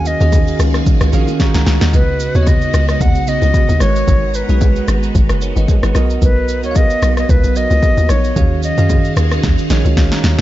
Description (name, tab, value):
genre	amapiano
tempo	112 BPM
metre	4/4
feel	swing 55% on 16ths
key	unclear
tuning	A4 = 440 Hz
part	silver concert flute	melody	0.0-9.1 s	B4 to F#5	-20 LUFS	equal	digital delay
part	bell-like tine electric piano	accompaniment	0.0-10.4 s	C#3 to C#6	-20 LUFS	right 5 dB	none
part	phased string machine	sustained chords	0.0-10.4 s	C#3 to A#5	-25 LUFS	left 1 dB	ensemble chorus, phaser, sidechain pumping
part	hollow log drum bass	bass	0.0-10.4 s	F#1 to F#2	-15 LUFS	equal	none
part	deep house drum kit	drums	0.1-10.4 s	kick drum, rim click, shaker, snare drum	-15 LUFS	equal	none
part	bongos and congas	percussion	0.1-10.4 s	none	-27 LUFS	left 7 dB	none
room	digital ambience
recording	nothing above 7.6 kHz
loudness	-11 LUFS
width	side -14 dB against mid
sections	0.0-10.4 A section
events	drum fill 1.4-1.9, 9.4-10.4; tine electric piano fill 9.4-10.4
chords	0.0 D#m11; 1.9 C#9sus4; 3.8 G#m9; 6.0 Bmaj7; 8.4 D#m11